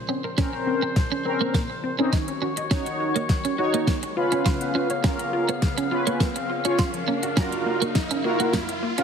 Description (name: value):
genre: dance-pop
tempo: 103 BPM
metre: 4/4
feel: straight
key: unclear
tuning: A4 = 440 Hz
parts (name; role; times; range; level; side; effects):
- mellow woodwind section; sustained chords; 0.0-8.9 s; Db2 to F5; -31 LUFS; left 2 dB; sidechain pumping
- wide unison pluck; arpeggios; 0.0-9.0 s; Gb2 to Eb5; -32 LUFS; left 4 dB; sidechain pumping, ping-pong delay
- riser; sound effects; 1.8-9.0 s; none; -34 LUFS; left 1 dB; none
- clean electric guitar; riff; 0.1-9.0 s; Bb3 to F4; -29 LUFS; right 7 dB; ensemble chorus
- mellow synth brass; accompaniment; 0.4-9.0 s; C4 to Db5; -26 LUFS; equal; chorus, sidechain pumping
- smooth R&B drum kit; drums; 0.4-9.0 s; hi-hat, kick drum, snare drum; -25 LUFS; equal; none
room: light reverb, digital ambience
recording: heavily compressed radio sound, high-pass filter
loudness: -21 LUFS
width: side -7 dB against mid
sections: 0.0-9.0 A section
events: build-up 0.0-9.0; drum fill 0.0-9.0; riser 1.8-9.0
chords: 0.0 Bbmadd9; 2.1 Ebm7; 4.2 Db7; 6.8 Gbmaj7